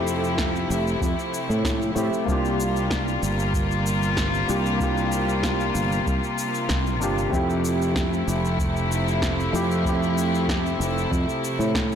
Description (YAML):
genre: sunset chillout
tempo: 95 BPM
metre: 4/4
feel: straight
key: F major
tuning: A4 = 440 Hz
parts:
  - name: soft electric-piano-like synth keys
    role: accompaniment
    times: 0.0-12.0 s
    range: A3 to G4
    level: -28 LUFS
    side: equal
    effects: chorus, auto-pan, low-pass filter, tape echo
  - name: warm chamber string section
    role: sustained chords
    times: 0.0-12.0 s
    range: C3 to F4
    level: -26 LUFS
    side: left 2 dB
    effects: none
  - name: fretless electric bass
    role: bass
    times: 0.0-12.0 s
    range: F1 to A2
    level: -25 LUFS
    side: equal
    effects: tube saturation, analog chorus
  - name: electronic shaker and snare drum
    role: drums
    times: 0.1-12.0 s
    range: none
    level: -31 LUFS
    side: equal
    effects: overdrive
  - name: electronic kick drum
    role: drums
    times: 0.4-11.9 s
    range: none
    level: -29 LUFS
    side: equal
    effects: none
room: light reverb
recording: blown-out, overdriven recording, overdrive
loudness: -21 LUFS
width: side -8 dB against mid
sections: 0.0-12.0 A section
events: none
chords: 0.0 Fmaj7; 2.3 C7sus4; 7.3 Fmaj7